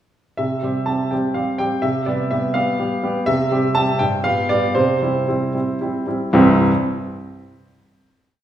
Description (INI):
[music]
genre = classical-period piano sonatina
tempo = 75-84 BPM (dotted quarters)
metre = 6/8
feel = rubato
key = C major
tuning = A4 = 442 Hz
[part]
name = clear grand piano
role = solo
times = 0.4-6.7 s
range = C2 to A5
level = -17 LUFS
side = right 1 dB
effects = none
[sound]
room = wet recital hall reverb, RT60 1.4 s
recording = heard from further back in the room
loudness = -17 LUFS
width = side -11 dB against mid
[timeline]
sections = 0.4-6.3 A section; 6.3-7.8 final chord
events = none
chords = 0.4 C; 1.8 G7/C; 3.3 C; 4.0 G7; 4.8 C